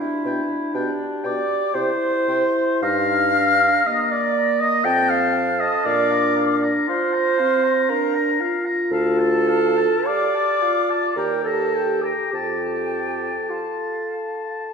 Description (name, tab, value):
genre	classical, slow romantic movement for wind quintet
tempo	50-62 BPM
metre	3/4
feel	rubato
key	Bb major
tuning	A4 = 440 Hz
part	hollow concert flute	melody	0.0-14.7 s	D5 to G6	-26 LUFS	left 7 dB	none
part	dark French horn	accompaniment	0.0-14.7 s	Bb3 to A4	-25 LUFS	left 2 dB	none
part	mellow clarinet	accompaniment	0.0-14.7 s	D4 to G5	-22 LUFS	right 4 dB	none
part	warm oboe	second line	0.3-14.7 s	F5 to Bb5	-27 LUFS	left 4 dB	none
part	mellow bassoon	bass	0.3-13.3 s	D2 to C3	-27 LUFS	equal	none
room	wet scoring stage reverb, RT60 1.8 s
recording	recorded in a church or concert hall, nothing above 10.7 kHz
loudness	-18 LUFS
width	side -6 dB against mid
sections	0.0-14.7 A section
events	none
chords	0.0 G/B; 1.8 C; 2.8 Ebmaj9/G; 4.9 F; 5.9 Bb; 8.9 Dm; 11.2 Eb; 12.3 F